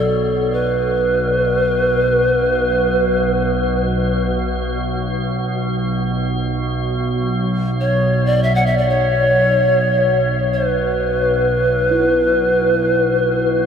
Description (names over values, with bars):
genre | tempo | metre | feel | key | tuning
world meditative, free-time meditation music | free time | none | none | unclear | A4 = 440 Hz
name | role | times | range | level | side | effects
polished pan flute | melody | 0.0-13.7 s | A4 to F#5 | -16 LUFS | equal | tape echo
icy glass pad | drone | 0.0-13.7 s | B1 to B2 | -19 LUFS | equal | chorus, built-in reverb
bronze singing bowl | texture | 11.9-13.7 s | E4 | -22 LUFS | right 1 dB | none
room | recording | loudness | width
wet huge ambient reverb, RT60 8.4 s | dreamy mix soaked in reverb | -15 LUFS | side -7 dB against mid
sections
0.0-13.7 A section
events
none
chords
none